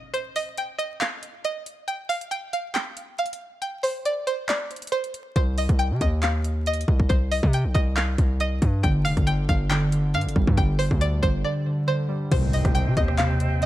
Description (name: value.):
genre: hip hop, trap.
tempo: 138 BPM.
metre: 4/4.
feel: half-time.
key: C minor.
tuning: A4 = 439 Hz.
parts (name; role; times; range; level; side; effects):
impact; sound effects; 0.0-0.1, 12.4-13.7 s; none; -31 LUFS; equal; none.
string-like resonator pluck; melody; 0.1-13.7 s; C5 to G5; -28 LUFS; right 1 dB; chorus, phaser.
trap drum kit; drums; 0.1-13.7 s; crash cymbal, handclaps, hi-hat, kick drum, rim click; -25 LUFS; equal; overdrive.
distorted 808-style bass; bass; 5.4-13.7 s; F1 to C3; -24 LUFS; equal; distortion.
warbly lo-fi synth keys; accompaniment; 8.8-13.7 s; C3 to G3; -25 LUFS; equal; chorus.
bright small flute group; sustained chords; 12.3-13.7 s; C4 to G5; -33 LUFS; right 2 dB; none.
room: digital ambience.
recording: vinyl crackle.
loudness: -21 LUFS.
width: side -14 dB against mid.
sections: 0.0-12.3 A section; 12.3-13.7 B section.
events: break 0.0-5.4, 11.4-12.3; impact 12.3-13.7.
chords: 0.0 N.C.; 5.4 Cm; 8.8 G5; 12.3 Cm.